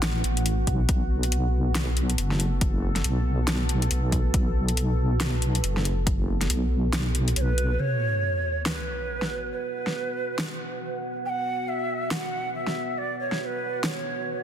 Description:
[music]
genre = deep dubstep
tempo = 139 BPM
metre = 4/4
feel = swing 60% on 16ths, half-time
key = unclear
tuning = A4 = 440 Hz
[part]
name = deep dark ambient pad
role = sustained chords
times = 0.0-14.4 s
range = B3 to F#5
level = -32 LUFS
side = right 1 dB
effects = chorus, built-in reverb
[part]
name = deep soft wobble bass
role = bass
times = 0.0-7.8 s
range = F#1 to B1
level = -24 LUFS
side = equal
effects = chorus
[part]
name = deep house drum kit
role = drums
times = 0.0-13.9 s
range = hi-hat, snare drum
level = -30 LUFS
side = left 1 dB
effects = overdrive
[part]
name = electronic kick drum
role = drums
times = 0.7-6.2 s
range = none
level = -25 LUFS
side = equal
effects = overdrive
[part]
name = breathy ney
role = melody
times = 7.4-14.4 s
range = B4 to G5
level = -29 LUFS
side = right 2 dB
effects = dub echo
[part]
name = sub drop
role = sound effects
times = 7.8-9.5 s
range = none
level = -30 LUFS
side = left 1 dB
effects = none
[sound]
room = light reverb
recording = dense, heavily limited modern master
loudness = -23 LUFS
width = side -10 dB against mid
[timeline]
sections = 0.0-7.8 A section; 7.8-14.4 B section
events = kick drops out 7.4-7.8; impact 7.8-9.5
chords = 0.0 B5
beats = 0.02 0.46 | 0.89 1.32 1.75 2.18 | 2.61 3.04 3.48 3.91 | 4.34 4.77 5.20 5.63 | 6.07 6.50 6.93 7.36 | 7.79 8.22 8.66 9.09 | 9.52 9.95 10.38 10.81 | 11.25 11.68 12.11 12.54 | 12.97 13.40 13.84 14.27

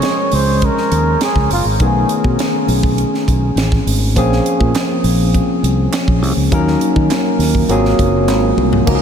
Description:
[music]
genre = polished 1980s jazz-funk pop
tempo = 102 BPM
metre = 4/4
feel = straight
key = Db major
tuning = A4 = 440 Hz
[part]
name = breathy flugelhorn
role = melody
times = 0.0-2.4 s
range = F4 to Db5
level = -20 LUFS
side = equal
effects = ping-pong delay
[part]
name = barky tine electric piano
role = accompaniment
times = 0.0-9.0 s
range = Eb3 to Bb4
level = -16 LUFS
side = left 1 dB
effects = lush chorus
[part]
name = crisp fusion drum kit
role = drums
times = 0.0-9.0 s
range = crash cymbal, hi-hat, kick drum, snare drum, toms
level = -19 LUFS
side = right 1 dB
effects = none
[part]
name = fingered electric bass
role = bass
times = 0.3-9.0 s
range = Gb1 to Eb3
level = -16 LUFS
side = equal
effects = none
[part]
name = group handclap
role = percussion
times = 4.8-8.4 s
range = none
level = -34 LUFS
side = right 6 dB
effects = none
[part]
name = hollow soft pad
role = sustained chords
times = 8.9-9.0 s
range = none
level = barely audible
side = none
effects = none
[sound]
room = moderate huge ambient reverb, RT60 7.5 s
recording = dreamy mix soaked in reverb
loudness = -12 LUFS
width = side -8 dB against mid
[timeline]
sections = 0.0-8.9 A section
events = drum fill 8.3-8.9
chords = 0.0 Db; 1.8 Cb13; 4.2 Bbm9; 6.5 Ebm7; 7.7 Ab13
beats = 0.04 0.62 1.21 | 1.80 2.39 2.98 3.57 | 4.16 4.75 5.34 5.93 | 6.52 7.11 7.70 8.29 | 8.88

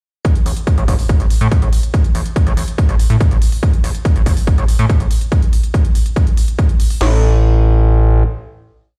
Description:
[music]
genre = driving peak-time techno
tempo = 142 BPM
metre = 4/4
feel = straight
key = unclear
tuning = A4 = 442 Hz
[part]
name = electronic hi-hat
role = drums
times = 0.2-7.0 s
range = none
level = -34 LUFS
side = equal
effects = sidechain pumping on hats
[part]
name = techno drum kit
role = drums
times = 0.2-7.1 s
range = crash cymbal, kick drum, snare drum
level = -15 LUFS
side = equal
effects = none
[part]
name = gritty driven synth bass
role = bass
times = 0.5-8.2 s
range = A1 to A2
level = -15 LUFS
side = equal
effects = sidechain pumping
[sound]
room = little or no reverb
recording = played on a big sound system in a bare room, stone room reverb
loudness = -14 LUFS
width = mono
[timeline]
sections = 0.2-7.0 groove; 7.0-9.0 final note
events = none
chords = none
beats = | 0.25 0.67 1.09 1.52 | 1.94 2.36 2.78 3.21 | 3.63 4.05 4.47 4.90 | 5.32 5.74 6.16 6.59 | 7.01 7.43 7.85

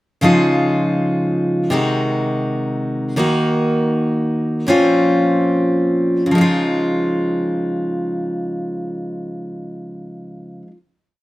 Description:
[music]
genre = acoustic folk duo or small band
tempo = free time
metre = none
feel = none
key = Db major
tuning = A4 = 443 Hz
[part]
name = picked steel-string acoustic guitar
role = solo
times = 0.2-10.8 s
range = Bb2 to Gb4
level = -16 LUFS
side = equal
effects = none
[sound]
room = moderate studio reverb, RT60 0.6 s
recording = none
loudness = -15 LUFS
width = side -17 dB against mid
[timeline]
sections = 0.2-6.3 interlude; 6.3-9.8 final chord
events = slowing down 3.2-6.3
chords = 0.2 Dbadd9; 1.7 Ab7/C; 3.2 Ebm; 4.7 Bbmadd9; 6.3 Dbadd9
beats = free time

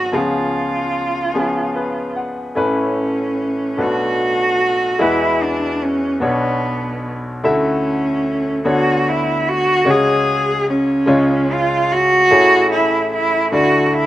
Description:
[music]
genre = acoustic folk-pop ballad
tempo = 49 BPM (dotted quarters)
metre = 6/8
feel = straight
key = unclear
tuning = A4 = 439 Hz
[part]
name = warm cello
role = melody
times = 0.0-14.1 s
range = B3 to G#4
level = -16 LUFS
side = right 1 dB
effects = none
[part]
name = bright concert grand piano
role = accompaniment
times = 0.0-14.1 s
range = A1 to F#5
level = -18 LUFS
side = left 1 dB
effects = slapback echo
[sound]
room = little or no reverb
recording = recorded outdoors, with no room sound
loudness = -14 LUFS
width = side -14 dB against mid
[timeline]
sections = 0.0-2.6 A section; 2.6-12.3 B section; 12.3-14.1 C section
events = none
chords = 0.1 C#7; 2.6 Aadd9; 3.8 Bm7; 5.0 Eadd9; 6.2 Bmadd9; 7.4 Dadd9; 8.7 Bmadd9/D; 9.9 C#sus4; 11.1 C#; 12.3 Amaj7; 13.5 Dsus2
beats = | 0.13 1.35 | 2.57 3.79 | 5.01 6.22 | 7.44 8.65 | 9.86 11.07 | 12.30 13.52

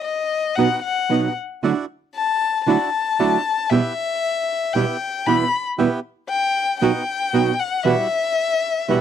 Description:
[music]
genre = tango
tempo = 116 BPM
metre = 4/4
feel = rubato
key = E minor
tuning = A4 = 440 Hz
[part]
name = warm violin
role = second line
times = 0.0-9.0 s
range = D#5 to B5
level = -20 LUFS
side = left 6 dB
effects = none
[part]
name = nylon-string guitar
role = accompaniment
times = 0.6-9.0 s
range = E2 to F#4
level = -18 LUFS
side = right 6 dB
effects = none
[part]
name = bandoneon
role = stabs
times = 0.6-9.0 s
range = G3 to G4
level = -24 LUFS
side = right 3 dB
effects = none
[sound]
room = little or no reverb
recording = dry, close 1970s-style studio recording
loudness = -18 LUFS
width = side -9 dB against mid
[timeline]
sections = 0.0-9.0 A section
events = violin solo 0.0-9.0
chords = 0.0 B; 1.6 Dadd9; 3.7 Em; 5.8 Em/B; 6.8 B; 7.9 Emadd9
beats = 0.06 0.58 1.10 | 1.63 2.16 2.68 3.19 | 3.71 4.23 4.75 5.26 | 5.78 6.29 6.81 7.33 | 7.85 8.37 8.89

